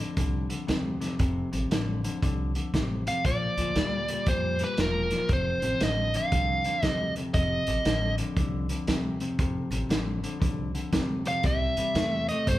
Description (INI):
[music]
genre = electric blues shuffle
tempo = 117 BPM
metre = 4/4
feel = swing 64% on 8ths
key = F major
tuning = A4 = 442 Hz
[part]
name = clean electric guitar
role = riff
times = 0.0-12.6 s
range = F2 to A3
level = -32 LUFS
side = left 2 dB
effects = none
[part]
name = upright bass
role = bass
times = 0.2-12.6 s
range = E1 to G2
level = -32 LUFS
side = equal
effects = none
[part]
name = vintage drum kit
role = drums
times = 0.2-12.6 s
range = hi-hat, kick drum, snare drum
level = -29 LUFS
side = equal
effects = none
[part]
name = biting lead guitar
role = melody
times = 3.1-8.1, 11.3-12.6 s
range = Bb4 to F5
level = -28 LUFS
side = right 1 dB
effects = overdrive
[sound]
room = light reverb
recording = band playing live in one room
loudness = -25 LUFS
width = side -15 dB against mid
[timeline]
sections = 0.0-12.6 A section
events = none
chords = 0.0 F; 3.2 Bb; 5.3 F; 11.4 C